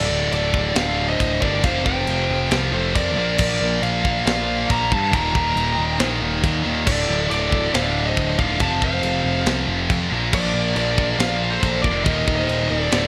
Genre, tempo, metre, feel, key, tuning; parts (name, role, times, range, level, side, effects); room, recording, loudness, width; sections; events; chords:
heavy metal; 138 BPM; 4/4; straight; D phrygian; A4 = 440 Hz
high-gain lead guitar; melody; 0.0-13.1 s; C5 to Bb5; -26 LUFS; equal; distortion
dark smooth lead guitar; second line; 0.0-13.1 s; A4 to G5; -33 LUFS; equal; overdrive
heavy high-gain guitar; riff; 0.0-13.1 s; D2 to Bb3; -27 LUFS; equal; distortion
high-gain distorted guitar; riff; 0.0-13.1 s; D2 to Bb3; -28 LUFS; equal; distortion
fuzz picked electric bass; bass; 0.0-13.1 s; D1 to G2; -27 LUFS; equal; overdrive
tight metal drum kit; drums; 0.3-13.0 s; china cymbal, crash cymbal, kick drum, snare drum; -27 LUFS; equal
moderate plate reverb, RT60 1.5 s, small room ambience; bright 1980s-style digital production; -20 LUFS; mono
0.0-13.1 A section
half time 0.0-13.1
0.0 D5; 1.6 F5; 3.2 Bb; 5.1 Eb; 6.9 D5; 8.6 F5; 10.1 Bb; 12.1 Eb5